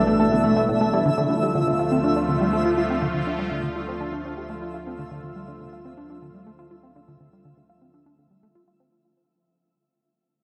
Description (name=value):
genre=ambient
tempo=122 BPM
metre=4/4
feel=straight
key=unclear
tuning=A4 = 440 Hz
part: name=sweeping resonant pad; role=sustained chords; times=0.0-8.9 s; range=B2 to F4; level=-29 LUFS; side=equal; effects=chorus
part: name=Celtic harp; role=arpeggios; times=0.0-3.9 s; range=A3 to A5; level=-29 LUFS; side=equal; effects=analog delay
part: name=plucky analog bass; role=riff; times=0.0-8.9 s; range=A2 to F4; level=-28 LUFS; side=equal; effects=analog delay
part: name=warm sub bass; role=bass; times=0.0-8.9 s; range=A1 to D2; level=-44 LUFS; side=equal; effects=none
part: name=twinkling granular texture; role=texture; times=0.0-8.9 s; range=E5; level=-30 LUFS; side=equal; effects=built-in reverb
room=wet huge ambient reverb, RT60 8.0 s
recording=worn, warbling old tape, cassette tape, warbly pitch drift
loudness=-23 LUFS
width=mono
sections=0.0-8.9 A section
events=fade-out on sub bass 0.0-8.9; fade-out 0.0-8.9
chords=0.0 Asus2; 1.1 Dm